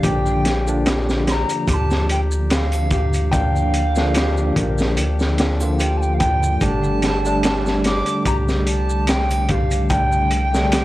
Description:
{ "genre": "trip hop", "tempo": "73 BPM", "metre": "4/4", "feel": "swing 55% on 16ths", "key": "unclear", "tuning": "A4 = 437 Hz", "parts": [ { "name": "wooden flute", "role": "melody", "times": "0.0-10.8 s", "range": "F5 to D6", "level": "-25 LUFS", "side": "right 1 dB", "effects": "tape echo" }, { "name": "tine electric piano", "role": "accompaniment", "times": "0.0-10.8 s", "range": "D3 to F4", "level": "-24 LUFS", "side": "equal", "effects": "fast stereo tremolo, harmonic tremolo" }, { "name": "felt-muted upright piano", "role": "arpeggios", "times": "0.0-10.8 s", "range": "G4 to G5", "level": "-26 LUFS", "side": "left 2 dB", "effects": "analog delay" }, { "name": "warm sub bass", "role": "bass", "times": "0.0-10.8 s", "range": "G1 to D2", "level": "-21 LUFS", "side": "equal", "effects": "none" }, { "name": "crunchy breakbeat drum kit", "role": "drums", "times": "0.0-10.8 s", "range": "hi-hat, kick drum, snare drum", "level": "-22 LUFS", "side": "equal", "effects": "none" }, { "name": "maracas and triangle", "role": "percussion", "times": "0.0-10.8 s", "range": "none", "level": "-38 LUFS", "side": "right 1 dB", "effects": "none" } ], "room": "small room ambience", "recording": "dry, gritty hardware recording, vinyl crackle", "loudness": "-16 LUFS", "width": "side -16 dB against mid", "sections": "0.0-10.8 A section", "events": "none", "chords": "0.0 Bb; 6.6 Gsus2", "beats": "| 0.04 0.86 1.68 2.50 | 3.33 4.15 4.97 5.79 | 6.61 7.43 8.26 9.08 | 9.90 10.72" }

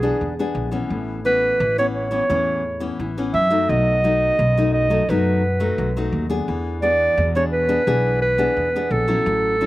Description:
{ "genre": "samba and choro", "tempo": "86 BPM", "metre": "4/4", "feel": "straight", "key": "unclear", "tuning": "A4 = 440 Hz", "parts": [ { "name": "warm clarinet", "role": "melody", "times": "0.0-9.7 s", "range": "G#4 to E5", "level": "-19 LUFS", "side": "right 1 dB", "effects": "none" }, { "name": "nylon-string guitar", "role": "accompaniment", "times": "0.0-9.7 s", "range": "F#2 to G#4", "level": "-24 LUFS", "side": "left 3 dB", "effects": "none" }, { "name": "upright bass", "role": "bass", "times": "0.0-9.7 s", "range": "A1 to F#2", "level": "-24 LUFS", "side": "equal", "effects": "none" } ], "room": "little or no reverb", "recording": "recorded outdoors, with no room sound", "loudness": "-17 LUFS", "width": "side -16 dB against mid", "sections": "0.0-9.7 A section", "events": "none", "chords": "0.0 E7; 0.9 Aadd9; 3.7 B7; 6.5 E7", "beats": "0.21 | 0.91 1.60 2.30 3.00 | 3.69 4.39 5.08 5.78 | 6.48 7.17 7.87 8.57 | 9.26" }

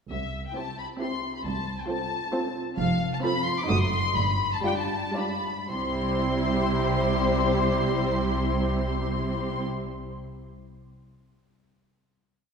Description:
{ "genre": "quick classical-period movement for string orchestra", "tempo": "109-138 BPM", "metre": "3/4", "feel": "rubato", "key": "C major", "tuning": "A4 = 440 Hz", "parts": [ { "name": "muted studio violin section", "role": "melody", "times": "0.1-9.6 s", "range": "E5 to D#6", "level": "-30 LUFS", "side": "left 3 dB", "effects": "none" }, { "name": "muted studio cello section", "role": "bass", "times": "0.1-9.6 s", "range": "C2 to C3", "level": "-32 LUFS", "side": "right 2 dB", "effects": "none" }, { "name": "muted studio double bass section", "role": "bass", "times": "0.1-9.6 s", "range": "F1 to C2", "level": "-31 LUFS", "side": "right 1 dB", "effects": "none" }, { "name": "muted studio violin section", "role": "second line", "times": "0.6-9.6 s", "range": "F4 to D5", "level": "-32 LUFS", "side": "left 1 dB", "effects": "none" }, { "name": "muted studio viola section", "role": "accompaniment", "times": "0.6-9.6 s", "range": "G3 to F4", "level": "-31 LUFS", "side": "right 2 dB", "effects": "none" } ], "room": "wet concert hall reverb, RT60 2.4 s", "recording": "heard from further back in the room", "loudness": "-24 LUFS", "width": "side -6 dB against mid", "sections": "0.1-5.7 A section; 5.7-8.9 final chord", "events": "slowing down 2.1-5.7", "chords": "0.1 C; 1.5 F/C; 2.8 F; 3.7 F#dim7; 4.2 G7; 5.7 C", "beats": "| 0.11 0.56 1.01 | 1.45 1.89 2.33 | 2.78 3.22 3.69 | 4.16 4.65 5.16 | 5.70 6.22 6.75 | 7.27 7.79 8.33" }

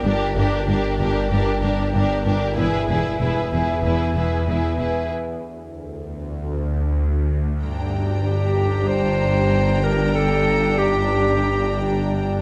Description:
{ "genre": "cinematic, suspense film score", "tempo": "95 BPM", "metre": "4/4", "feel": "straight", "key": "G minor from 7.6 s", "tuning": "A4 = 441 Hz", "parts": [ { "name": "rich symphonic violin section", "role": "melody", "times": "0.0-12.4 s", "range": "Bb4 to Bb5", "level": "-36 LUFS", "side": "equal", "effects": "none" }, { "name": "warm studio violin section", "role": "second line", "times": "0.0-12.4 s", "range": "G4 to G5", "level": "-32 LUFS", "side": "equal", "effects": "none" }, { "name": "rich symphonic viola section", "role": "accompaniment", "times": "0.0-12.4 s", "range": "D4 to E4", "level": "-30 LUFS", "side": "equal", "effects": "none" }, { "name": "glass harmonica", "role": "sustained chords", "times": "0.0-12.4 s", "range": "G4 to G#5", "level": "-30 LUFS", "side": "equal", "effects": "none" }, { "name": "clear symphonic double bass section", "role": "bass", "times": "0.0-12.4 s", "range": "E1 to G1", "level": "-29 LUFS", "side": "equal", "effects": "none" }, { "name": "bowed-like drone", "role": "drone", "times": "0.0-12.4 s", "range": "G1 to E2", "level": "-27 LUFS", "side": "equal", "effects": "built-in reverb, phaser" }, { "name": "rich symphonic cello section", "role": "bass", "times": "0.1-12.4 s", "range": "E2 to G2", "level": "-27 LUFS", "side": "equal", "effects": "none" }, { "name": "clear clarinet", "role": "second line", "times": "8.3-12.4 s", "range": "G4 to C5", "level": "-24 LUFS", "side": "equal", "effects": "none" } ], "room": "light reverb", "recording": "close, detailed microphones", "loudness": "-21 LUFS", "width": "mono", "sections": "0.0-7.6 A section; 7.6-12.4 B section", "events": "break 5.1-7.6", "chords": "0.0 Gm; 2.6 E; 5.1 N.C.; 7.6 Gm", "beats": "| 0.05 0.68 1.31 1.95 | 2.58 3.21 3.84 4.47 | 5.11 5.74 6.37 7.00 | 7.63 8.26 8.89 9.53 | 10.16 10.79 11.42 12.05" }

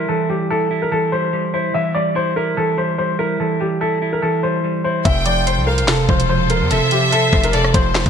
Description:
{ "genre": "hip hop, drill", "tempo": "145 BPM", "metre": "4/4", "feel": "half-time", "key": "unclear", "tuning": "A4 = 440 Hz", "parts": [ { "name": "warm upright piano", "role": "melody", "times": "0.0-8.1 s", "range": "G4 to E5", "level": "-19 LUFS", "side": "left 2 dB", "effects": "low-pass filter, digital delay" }, { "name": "mellow electric guitar", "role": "accompaniment", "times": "0.0-8.1 s", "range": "C3 to C5", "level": "-20 LUFS", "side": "right 4 dB", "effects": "wide subtle chorus, low-pass filter" }, { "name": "warm studio violin section", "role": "second line", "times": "5.1-8.1 s", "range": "C5 to G5", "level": "-20 LUFS", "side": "left 2 dB", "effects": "digital delay" }, { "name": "clear studio string section", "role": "sustained chords", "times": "5.1-8.1 s", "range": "F3 to C5", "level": "-26 LUFS", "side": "left 1 dB", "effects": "none" }, { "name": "distorted 808-style bass", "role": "bass", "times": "5.1-8.1 s", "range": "E1 to F2", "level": "-20 LUFS", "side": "left 1 dB", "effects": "distortion" }, { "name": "drill drum kit", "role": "drums", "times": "5.1-8.1 s", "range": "handclaps, hi-hat, kick drum, rim click, snare drum", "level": "-18 LUFS", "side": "left 1 dB", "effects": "vintage 12-bit sampler grit" } ], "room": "light reverb, studio reverb", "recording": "bright 1980s-style digital production", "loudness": "-15 LUFS", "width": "side -7 dB against mid", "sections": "0.0-8.1 A section", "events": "none", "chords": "0.0 C6/E; 5.1 F", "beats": "| 0.09 0.50 0.92 1.33 | 1.74 2.16 2.57 2.98 | 3.40 3.81 4.22 4.64 | 5.05 5.47 5.88 6.29 | 6.71 7.12 7.54 7.95" }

